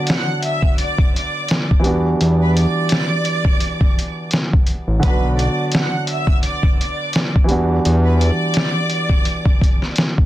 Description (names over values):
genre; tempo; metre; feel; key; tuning
hip hop, boom-bap hip-hop; 85 BPM; 4/4; swing 55% on 16ths; E minor; A4 = 440 Hz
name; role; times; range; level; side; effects
warm studio violin section; melody; 0.0-9.9 s; B4 to F#6; -24 LUFS; equal; none
dark baby grand piano; accompaniment; 0.0-10.3 s; D3 to F#4; -22 LUFS; right 1 dB; cassette tape
trip hop sampler-style drum kit; drums; 0.1-10.3 s; hi-hat, kick drum, snare drum; -16 LUFS; equal; none
fat analog bass; bass; 1.9-8.3 s; A1 to E2; -16 LUFS; equal; none
room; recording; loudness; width
light reverb; dense, heavily limited modern master; -15 LUFS; side -14 dB against mid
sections
0.0-10.3 A section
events
none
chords
0.0 Bm; 1.9 Em7; 5.0 Bm; 7.5 Em7